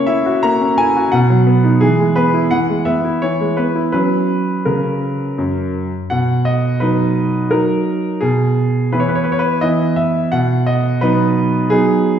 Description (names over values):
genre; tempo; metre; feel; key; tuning
classical-period piano sonatina; 86 BPM; 3/4; straight; B major; A4 = 440 Hz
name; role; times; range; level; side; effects
bright grand piano; solo; 0.0-12.2 s; F#2 to A#5; -13 LUFS; right 1 dB; none
room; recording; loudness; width
wet recital hall reverb, RT60 1.5 s; heard from further back in the room; -13 LUFS; side -8 dB against mid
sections
0.0-6.1 A section; 6.1-12.2 B section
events
none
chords
0.0 F#7/A#; 1.1 B; 1.8 E; 4.0 F#; 6.1 B; 8.2 E/B; 10.3 B